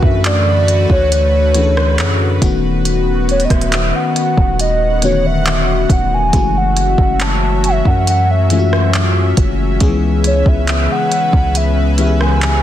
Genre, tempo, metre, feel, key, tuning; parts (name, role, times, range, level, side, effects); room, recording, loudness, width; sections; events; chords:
contemporary R&B; 69 BPM; 4/4; straight; F# minor; A4 = 440 Hz
hollow clarinet-like synth lead; melody; 0.0-12.6 s; C#5 to A5; -18 LUFS; equal; chorus, ping-pong delay
FM electric piano; accompaniment; 0.0-12.6 s; D3 to A4; -19 LUFS; left 7 dB; chorus
lush unison pad; sustained chords; 0.0-12.6 s; C#3 to F#5; -22 LUFS; right 1 dB; chorus
long sustained 808-style bass; bass; 0.0-12.6 s; D#1 to F#2; -16 LUFS; right 1 dB
smooth R&B drum kit; drums; 0.0-12.6 s; handclaps, hi-hat, kick drum, rim click; -17 LUFS; right 1 dB; vintage 12-bit sampler grit
little or no reverb; dense, heavily limited modern master; -11 LUFS; side -11 dB against mid
0.0-12.6 A section
0.0 Dmaj7; 2.4 B7/D#; 6.3 F#m7; 9.8 C#m7